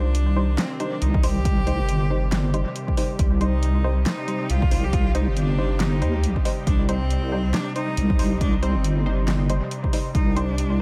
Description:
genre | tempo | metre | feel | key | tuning
deep dubstep | 138 BPM | 4/4 | swing 58% on 16ths, half-time | C minor | A4 = 440 Hz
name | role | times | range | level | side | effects
clear cello | melody | 0.0-10.8 s | C4 to G4 | -34 LUFS | equal | dub echo
bowed-like drone | sustained chords | 0.0-10.8 s | C3 to D5 | -33 LUFS | equal | built-in reverb
filtered dub chord stab | stabs | 0.0-10.5 s | G3 to C5 | -33 LUFS | equal | chorus, dub echo
deep soft wobble bass | bass | 0.0-10.8 s | G1 to Eb2 | -24 LUFS | equal | chorus
deep house drum kit | drums | 0.1-10.7 s | handclaps, hi-hat, snare drum | -32 LUFS | equal | overdrive, dub echo
electronic kick drum | drums | 1.1-10.2 s | none | -25 LUFS | equal | overdrive
room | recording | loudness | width
little or no reverb | echo-heavy mix | -22 LUFS | mono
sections
0.0-10.8 A section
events
none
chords
0.0 Cm

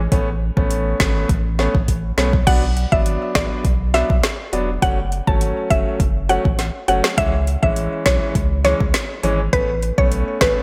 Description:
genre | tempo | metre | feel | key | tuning
dancehall | 102 BPM | 4/4 | straight | B dorian | A4 = 441 Hz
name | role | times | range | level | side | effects
warm sub bass | bass | 0.0-10.5 s | E1 to C#2 | -24 LUFS | equal | none
bright grand piano | accompaniment | 0.1-10.6 s | E3 to D4 | -26 LUFS | equal | sidechain pumping
afro-pop drum kit | drums | 0.1-10.6 s | crash cymbal, hi-hat, kick drum, snare drum | -22 LUFS | equal | overdrive, gated reverb
mallet-like synth pluck | melody | 2.5-10.5 s | B4 to A5 | -24 LUFS | equal | chorus, delay
room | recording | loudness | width
light reverb | bright 1980s-style digital production | -18 LUFS | mono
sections
0.0-2.5 A section; 2.5-10.6 B section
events
drum fill 1.9-2.5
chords
0.1 Aadd9; 2.5 Bm; 4.8 F#m; 7.2 C#m; 9.5 Aadd9

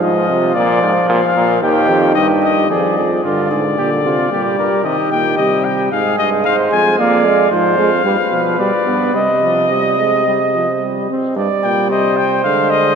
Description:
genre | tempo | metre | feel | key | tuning
classical, imitative canzona for brass ensemble | 112 BPM | 4/4 | straight | C minor from 7.0 s | A4 = 442 Hz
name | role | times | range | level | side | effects
mellow trumpet | melody | 0.0-13.0 s | D5 to Ab5 | -18 LUFS | left 7 dB | none
warm flugelhorn | second line | 0.0-13.0 s | F4 to Eb5 | -18 LUFS | right 4 dB | none
clear trombone | accompaniment | 0.0-13.0 s | D3 to C4 | -18 LUFS | right 1 dB | none
bright bass trombone | bass | 0.0-13.0 s | Eb2 to D3 | -19 LUFS | right 1 dB | none
room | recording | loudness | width
wet cathedral reverb, RT60 4.4 s | none | -12 LUFS | side -6 dB against mid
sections
0.0-2.7 A section; 2.7-11.4 B section; 11.4-13.0 C section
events
none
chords
0.0 Fm; 0.6 Bb; 1.6 Eb; 2.7 Ddim/F; 3.8 Gm/Bb; 4.8 Cm; 5.9 Fm; 7.0 Ddim/F; 8.0 G; 9.1 Cm; 11.4 Cm/G; 12.4 Ddim

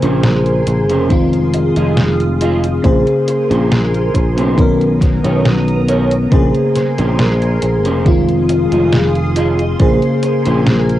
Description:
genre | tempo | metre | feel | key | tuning
vaporwave | 69 BPM | 4/4 | straight | Bb minor | A4 = 436 Hz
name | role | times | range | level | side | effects
FM electric piano with soft pad layer | accompaniment | 0.0-11.0 s | Db3 to C5 | -15 LUFS | left 1 dB | lush chorus, cassette tape, analog delay
soft string machine | sustained chords | 0.0-11.0 s | B3 to Eb6 | -23 LUFS | equal | phaser, ensemble chorus, cassette tape
electric guitar at the edge of break-up | riff | 0.0-10.7 s | Db4 to Eb5 | -21 LUFS | right 2 dB | ensemble chorus, low-pass filter, cassette tape, analog delay
sustaining fretless electric bass | bass | 0.0-11.0 s | F1 to Cb2 | -16 LUFS | equal | none
detuned 8-bit digital drum machine | drums | 0.0-11.0 s | hi-hat, snare drum | -18 LUFS | equal | overdrive, cassette tape
electronic kick drum | drums | 1.1-10.0 s | none | -14 LUFS | equal | overdrive, cassette tape
room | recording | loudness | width
light reverb | home recording on cassette | -11 LUFS | side -14 dB against mid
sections
0.0-11.0 A section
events
none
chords
0.0 Bbm9; 1.1 Fm7; 2.8 Bbm9; 4.6 Bmaj9; 6.3 Bbm9; 8.1 Fm7; 9.8 Bbm9

